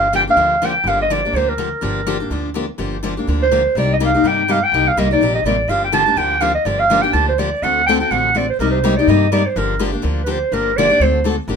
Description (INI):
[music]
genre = acoustic string swing (jazz manouche)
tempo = 248 BPM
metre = 4/4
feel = swing 56% on 8ths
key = G minor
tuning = A4 = 438 Hz
[part]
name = growling clarinet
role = melody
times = 0.0-11.3 s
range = Bb4 to A5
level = -16 LUFS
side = right 2 dB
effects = none
[part]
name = picked steel-string acoustic guitar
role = accompaniment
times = 0.0-11.6 s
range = C3 to A4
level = -19 LUFS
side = left 4 dB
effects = none
[part]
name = upright bass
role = bass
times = 0.0-11.6 s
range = G1 to G2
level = -22 LUFS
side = right 1 dB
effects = none
[sound]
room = moderate club reverb, RT60 0.5 s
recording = minimal, uncompressed stereo recording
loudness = -14 LUFS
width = side -6 dB against mid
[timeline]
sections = 0.0-11.5 A section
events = none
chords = 0.0 Gm7; 3.8 Cm9; 5.7 Gm7; 7.6 D7; 8.6 Cm7; 9.6 Gm7; 11.0 D7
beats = 0.12 0.37 0.61 | 0.85 1.09 1.33 1.57 | 1.82 2.06 2.30 2.54 | 2.78 3.03 3.27 3.51 | 3.75 3.99 4.24 4.48 | 4.72 4.96 5.20 5.45 | 5.69 5.93 6.17 6.41 | 6.65 6.90 7.14 7.38 | 7.62 7.86 8.11 8.35 | 8.59 8.83 9.07 9.31 | 9.55 9.80 10.04 10.28 | 10.52 10.76 11.01 11.25 | 11.49